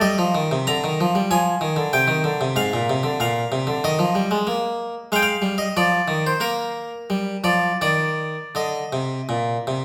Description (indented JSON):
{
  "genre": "classical, baroque-style suite movement for harpsichord",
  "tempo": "80-98 BPM",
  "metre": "4/4",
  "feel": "rubato",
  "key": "Eb major",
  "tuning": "A4 = 441 Hz",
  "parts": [
    { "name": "harpsichord", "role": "solo", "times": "0.0-9.8 s", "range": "Ab2 to Bb5", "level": "-22 LUFS", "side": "equal", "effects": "none" }
  ],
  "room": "wet recital hall reverb, RT60 1.2 s",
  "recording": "none",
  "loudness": "-22 LUFS",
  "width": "mono",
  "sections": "0.0-9.8 A section",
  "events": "none",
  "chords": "0.0 Eb; 1.3 Fm; 2.6 Bb; 3.8 Eb5; 5.1 Fm7; 6.4 Bb5; 7.8 Eb5",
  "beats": "| 0.01 0.68 1.30 1.93 | 2.56 3.19 3.82 4.46 | 5.10 5.75 6.40 7.09 | 7.81 8.55 9.30"
}